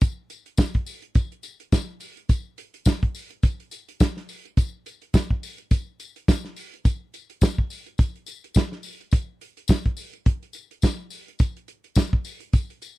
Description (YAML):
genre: disco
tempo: 105 BPM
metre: 4/4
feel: swing 56% on 16ths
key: none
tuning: none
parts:
  - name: warm soul drum kit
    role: drums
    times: 0.0-13.0 s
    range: hi-hat, kick drum, snare drum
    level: -19 LUFS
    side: equal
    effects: none
  - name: tambourine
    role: percussion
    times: 0.0-13.0 s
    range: none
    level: -39 LUFS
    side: left 9 dB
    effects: none
room: little or no reverb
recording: dry, close 1970s-style studio recording, lossy compression artefacts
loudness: -22 LUFS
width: side -20 dB against mid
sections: 0.0-13.0 A section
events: none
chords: none